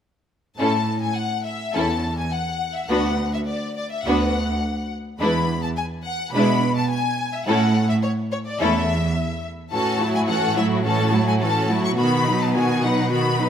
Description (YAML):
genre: quick classical-period movement for string orchestra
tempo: 106 BPM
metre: 4/4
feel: rubato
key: A major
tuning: A4 = 440 Hz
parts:
  - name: rich studio violin section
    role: melody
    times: 0.6-13.5 s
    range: C#5 to C#6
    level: -26 LUFS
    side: left 4 dB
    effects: none
  - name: warm studio violin section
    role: second line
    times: 0.6-13.5 s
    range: D#4 to B4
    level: -25 LUFS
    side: left 3 dB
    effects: none
  - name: rich studio viola section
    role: accompaniment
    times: 0.6-13.5 s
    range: D#3 to D#4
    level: -25 LUFS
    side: right 2 dB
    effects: none
  - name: rich studio cello section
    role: bass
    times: 0.6-13.5 s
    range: D2 to B2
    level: -23 LUFS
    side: right 2 dB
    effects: none
room: moderate scoring stage reverb, RT60 1.9 s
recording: none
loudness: -19 LUFS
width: side -8 dB against mid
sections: 0.6-13.5 A section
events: none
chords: 0.6 A; 2.9 Bm/D; 5.2 E7; 7.5 A; 9.7 F#m7/A; 12.0 B